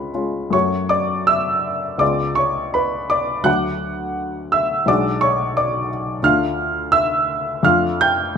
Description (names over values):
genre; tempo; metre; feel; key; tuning
classical, romantic character piece for solo piano; 67-90 BPM; 2/4; rubato; F# minor; A4 = 442 Hz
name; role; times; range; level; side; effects
warm baby grand piano; solo; 0.0-8.4 s; B1 to G6; -17 LUFS; equal; none
room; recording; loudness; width
moderate large studio reverb, RT60 0.9 s; none; -17 LUFS; side -7 dB against mid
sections
0.5-8.4 A section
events
none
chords
0.0 C#; 0.5 F#m; 2.0 C#7b9; 3.5 D; 4.9 G#m7b5/B; 6.2 Dm; 7.6 Dm/F